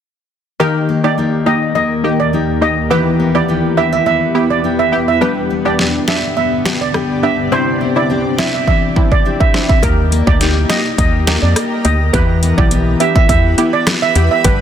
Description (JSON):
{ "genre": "dancehall", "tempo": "104 BPM", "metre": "4/4", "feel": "straight", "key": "unclear", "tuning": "A4 = 440 Hz", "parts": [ { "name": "steel pan", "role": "melody", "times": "0.6-14.6 s", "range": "Bb4 to E5", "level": "-17 LUFS", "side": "right 4 dB", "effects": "none" }, { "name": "punchy chord stab", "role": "accompaniment", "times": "0.6-14.6 s", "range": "Bb3 to G4", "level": "-20 LUFS", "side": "equal", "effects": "chorus" }, { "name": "granular cloud pad", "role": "sustained chords", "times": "1.4-14.6 s", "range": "C2 to B5", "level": "-22 LUFS", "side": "equal", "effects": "built-in reverb, sidechain pumping" }, { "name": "nylon-string guitar", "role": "arpeggios", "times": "0.6-14.6 s", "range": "C3 to G4", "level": "-19 LUFS", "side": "left 4 dB", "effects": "none" }, { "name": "pop drum kit", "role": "drums", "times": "5.8-14.6 s", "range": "finger snaps, hi-hat, kick drum, rim click, snare drum", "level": "-15 LUFS", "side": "equal", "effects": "none" }, { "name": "organ-like FM bass", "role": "bass", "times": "9.8-14.6 s", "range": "G1 to F2", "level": "-14 LUFS", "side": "equal", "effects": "none" } ], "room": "light reverb", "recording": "dense, heavily limited modern master", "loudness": "-11 LUFS", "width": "side -9 dB against mid", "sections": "0.6-9.8 A section; 9.8-14.6 B section", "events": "drum fill 8.7-9.8", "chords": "0.6 Eb; 2.9 Em; 5.2 G; 7.5 Cadd9; 9.8 Eb; 12.1 Em" }